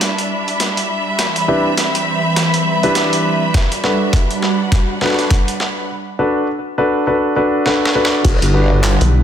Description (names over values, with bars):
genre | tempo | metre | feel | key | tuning
glitch hop | 102 BPM | 4/4 | swing 59% on 16ths | E minor | A4 = 440 Hz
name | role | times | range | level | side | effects
warm analog pad | sustained chords | 0.0-9.2 s | D3 to D5 | -22 LUFS | right 2 dB | chorus, sidechain pumping
warm concert grand piano | stabs | 0.0-9.2 s | D4 to B4 | -18 LUFS | left 1 dB | sidechain pumping, low-pass filter, ping-pong delay
boom bap sampler-style drum kit | drums | 0.0-9.1 s | crash cymbal, handclaps, hi-hat, snare drum | -20 LUFS | equal | high-pass filter on hats, high-pass filter on toms, high-pass filter on snare, high-pass filter on cymbals, high-pass filter on room
rich studio string section | texture | 0.0-5.9 s | G3 to B5 | -19 LUFS | equal | sidechain pumping
electronic kick drum | drums | 3.5-8.4 s | none | -14 LUFS | equal | none
growl bass | bass | 8.2-9.0 s | E1 to G1 | -14 LUFS | equal | distortion, chorus
rubbery square bass | bass | 9.0-9.2 s | B1 | -11 LUFS | equal | none
room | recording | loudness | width
light reverb | none | -13 LUFS | side -9 dB against mid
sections
0.0-8.2 A section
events
build-up 0.0-8.2; drum fill 0.0-5.9, 7.7-8.2; filter sweep on analog synth pad 0.0-8.2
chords
0.0 Em7; 1.2 Cmaj7; 3.5 Gmaj7; 5.9 D6; 8.2 Em7